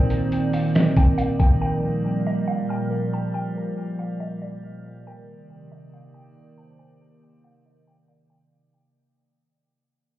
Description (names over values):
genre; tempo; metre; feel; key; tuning
hip hop, atmospheric cloud-rap; 139 BPM; 4/4; half-time; unclear; A4 = 444 Hz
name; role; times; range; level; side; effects
mallet-like synth pluck; melody; 0.0-8.5 s; D5 to A5; -33 LUFS; right 1 dB; chorus, phaser, low-pass filter, digital delay
warbly tape-like pad; sustained chords; 0.0-8.5 s; Bb2 to D5; -24 LUFS; right 1 dB; chorus, built-in reverb, sidechain pumping, low-pass filter
glassy digital keys; arpeggios; 0.0-8.5 s; Bb4 to F6; -35 LUFS; left 2 dB; chorus, low-pass filter, digital delay
drifting glass-harmonics texture; texture; 0.0-8.5 s; Bb3 to F5; -36 LUFS; equal; chorus, built-in reverb
lo-fi sampler-style drum kit; drums; 0.1-1.5 s; hi-hat, kick drum, snare drum; -18 LUFS; equal; none
room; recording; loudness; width
light reverb; heard muffled through a wall, club reverb, EQ; -20 LUFS; side -14 dB against mid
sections
0.0-8.5 A section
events
fade-out 0.0-8.5; filter sweep 0.0-8.5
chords
0.0 Cm9; 1.6 Gm7; 5.1 Cm9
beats
0.32 0.75 1.18 | 1.61 2.05 2.48 2.91 | 3.34 3.77 4.20 4.64 | 5.07 5.50 5.93 6.36 | 6.79 7.23 7.66 8.09